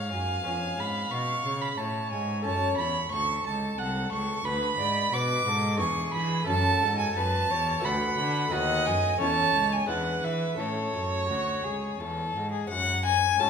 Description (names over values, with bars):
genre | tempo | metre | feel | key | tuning
classical, baroque-style sonata movement with continuo | 88 BPM | 3/4 | straight | F# minor, A major from 4.5 s | A4 = 440 Hz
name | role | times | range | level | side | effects
rich violin | melody | 0.0-13.5 s | F#4 to A5 | -30 LUFS | left 7 dB | none
rich violin | second line | 0.0-13.5 s | C#5 to D6 | -28 LUFS | right 5 dB | none
lute | accompaniment | 0.0-13.5 s | D2 to C#5 | -35 LUFS | left 3 dB | none
rich cello | bass | 0.0-13.5 s | B#1 to E3 | -31 LUFS | right 1 dB | none
room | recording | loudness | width
wet recital hall reverb, RT60 1.6 s | minimal, uncompressed stereo recording | -25 LUFS | side -6 dB against mid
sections
0.0-12.7 A section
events
none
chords
0.5 C#7/E#; 2.5 F#m; 4.5 Bm/D; 5.8 E7; 6.5 F#m; 7.8 Bm7/D; 8.5 B7/D#; 9.2 A/E; 9.9 E7; 10.6 A; 12.7 F#m